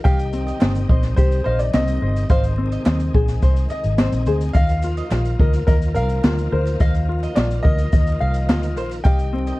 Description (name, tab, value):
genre	acoustic pop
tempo	107 BPM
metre	4/4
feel	straight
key	Eb major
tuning	A4 = 440 Hz
part	clear upright piano	melody	0.0-9.6 s	Bb4 to G5	-27 LUFS	equal	none
part	ukulele	accompaniment	0.0-9.6 s	C4 to F5	-26 LUFS	left 4 dB	none
part	bright tonewheel organ	sustained chords	0.0-9.6 s	C3 to F4	-33 LUFS	right 1 dB	overdrive, chorus vibrato, fast rotary speaker
part	mandolin	arpeggios	0.0-9.6 s	C5 to F5	-33 LUFS	right 5 dB	none
part	vintage muted fingered electric bass	bass	0.1-9.5 s	G1 to Eb2	-21 LUFS	equal	none
part	jazz brush drum kit	drums	0.1-9.6 s	kick drum, shaker, snare drum	-18 LUFS	equal	none
part	group handclap	percussion	0.6-8.6 s	none	-37 LUFS	right 5 dB	none
room	little or no reverb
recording	dark, warm production, vinyl crackle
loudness	-16 LUFS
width	side -19 dB against mid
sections	0.0-9.6 A section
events	none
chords	0.1 Cm; 2.3 Ab; 4.5 Ebsus2; 9.0 Cm